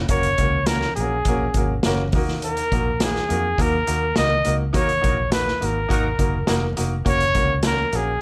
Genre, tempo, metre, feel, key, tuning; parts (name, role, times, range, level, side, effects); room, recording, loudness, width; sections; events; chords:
uptempo 1960s-style soul; 103 BPM; 4/4; straight; A4 = 440 Hz
vintage muted fingered electric bass; bass; 0.0-8.2 s; E#1 to E#2; -28 LUFS; equal
breathy trumpet; melody; 0.1-8.2 s; G#4 to D#5; -25 LUFS; equal
bright grand piano; accompaniment; 0.1-8.1 s; A#3 to A#4; -29 LUFS; equal
vintage drum kit; drums; 0.1-8.1 s; hi-hat, kick drum, snare drum; -26 LUFS; equal
warm horn section; second line; 4.7-6.1 s; D#4 to A#4; -34 LUFS; equal
little or no reverb; -21 LUFS; mono
0.0-8.2 A section
band accent 4.7-7.1
0.0 F#; 2.1 D#m; 7.1 F#